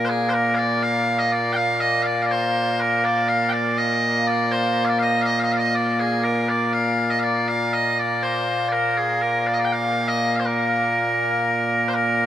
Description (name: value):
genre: scottish traditional, Scottish pipe music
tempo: 81 BPM (dotted quarters)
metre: 6/8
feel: straight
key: Bb major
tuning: A4 = 442 Hz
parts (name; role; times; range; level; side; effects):
- loud bright bagpipes; solo; 0.0-12.3 s; Bb2 to G5; -18 LUFS; equal; none
room: wet huge ambient reverb, RT60 7.5 s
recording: heard from further back in the room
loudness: -18 LUFS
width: side -11 dB against mid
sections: 0.1-11.9 A section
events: none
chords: none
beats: | 0.08 0.82 | 1.56 2.30 | 3.04 3.78 | 4.52 5.26 | 6.01 6.75 | 7.49 8.23 | 8.97 9.71 | 10.45 11.19 | 11.93